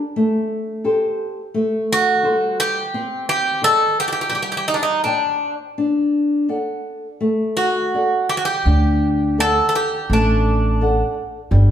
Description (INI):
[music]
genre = fado-style ballad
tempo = 85 BPM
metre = 4/4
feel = rubato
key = unclear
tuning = A4 = 440 Hz
[part]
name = flamenco guitar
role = accompaniment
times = 0.0-11.7 s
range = G3 to G5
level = -21 LUFS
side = left 1 dB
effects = none
[part]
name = Greek bouzouki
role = melody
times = 1.9-11.1 s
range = D4 to A4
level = -18 LUFS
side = right 1 dB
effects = none
[part]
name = upright bass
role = bass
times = 8.7-11.7 s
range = G1 to D2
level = -16 LUFS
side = right 1 dB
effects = none
[sound]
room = wet large studio reverb, RT60 1.4 s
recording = band playing live in one room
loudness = -16 LUFS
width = side -10 dB against mid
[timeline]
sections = 0.0-11.7 A section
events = none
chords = 0.2 Gsus24; 2.9 Cmadd9; 5.8 D